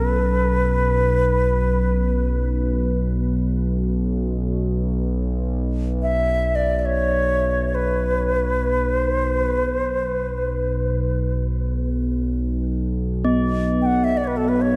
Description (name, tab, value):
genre	world meditative, free-time meditation music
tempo	free time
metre	none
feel	none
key	unclear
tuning	A4 = 440 Hz
part	bright reedy xiao	melody	0.0-14.8 s	A4 to G5	-25 LUFS	equal	tape echo
part	analog drone	drone	0.0-14.8 s	B1	-24 LUFS	equal	chorus
part	bronze singing bowl	texture	0.0-2.0, 13.2-14.8 s	B3 to C#4	-27 LUFS	equal	none
room	moderate huge ambient reverb, RT60 4.2 s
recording	dark, warm production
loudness	-21 LUFS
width	mono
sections	0.0-14.8 A section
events	none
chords	none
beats	free time